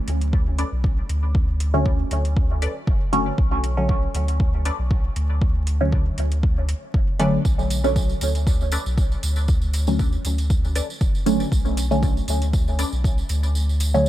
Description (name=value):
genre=dub techno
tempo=118 BPM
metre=4/4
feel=swing 54% on 16ths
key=B minor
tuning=A4 = 440 Hz
part: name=filtered dub chord stab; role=stabs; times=0.0-14.1 s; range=D3 to C#4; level=-25 LUFS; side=equal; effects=phaser, sidechain pumping, dub echo
part: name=warm sub bass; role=bass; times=0.1-14.1 s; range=F#1 to D2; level=-23 LUFS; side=equal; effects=sidechain pumping
part: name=electronic hi-hat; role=drums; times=0.1-13.9 s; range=none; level=-36 LUFS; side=right 1 dB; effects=overdrive, studio reverb
part: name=electronic kick drum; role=drums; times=0.3-13.2 s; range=none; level=-21 LUFS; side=equal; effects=overdrive, studio reverb
part: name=filtered dub chord stab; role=riff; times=0.6-12.9 s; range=C#4 to D5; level=-35 LUFS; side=left 3 dB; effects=phaser, cassette tape, sidechain pumping, dub echo
part: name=tambourine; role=percussion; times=7.5-14.1 s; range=none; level=-34 LUFS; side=right 3 dB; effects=none
room=little or no reverb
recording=vinyl crackle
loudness=-19 LUFS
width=side -14 dB against mid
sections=0.0-14.1 A section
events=kick drops out 13.6-14.1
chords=0.0 Bm9